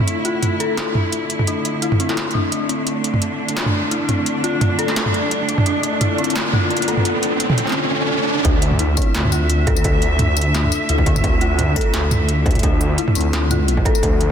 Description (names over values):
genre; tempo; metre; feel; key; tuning
half-time drum and bass; 172 BPM; 4/4; swing 54% on 16ths, half-time; unclear; A4 = 441 Hz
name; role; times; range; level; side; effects
clear symphonic cello section; sustained chords; 0.0-14.3 s; D3 to E5; -23 LUFS; right 1 dB; sidechain pumping
dark detuned synth bell; arpeggios; 0.0-14.3 s; C4 to A4; -23 LUFS; left 4 dB; chorus, phaser, low-pass filter, digital delay
industrial drum kit; drums; 0.0-14.3 s; hi-hat, snare drum, tambourine, toms; -21 LUFS; right 1 dB; none
riser; sound effects; 4.4-8.4 s; none; -24 LUFS; right 2 dB; none
dark detuned saw bass; bass; 8.4-14.3 s; D2; -19 LUFS; equal; none
electronic kick drum; drums; 8.4-14.1 s; none; -18 LUFS; equal; distortion
room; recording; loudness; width
moderate lush hall reverb, RT60 1.9 s; dense, heavily limited modern master; -16 LUFS; side -8 dB against mid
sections
0.0-8.4 A section; 8.4-14.3 B section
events
build-up 0.0-8.4; riser 4.4-8.4; drop 8.4-14.3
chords
0.0 Dm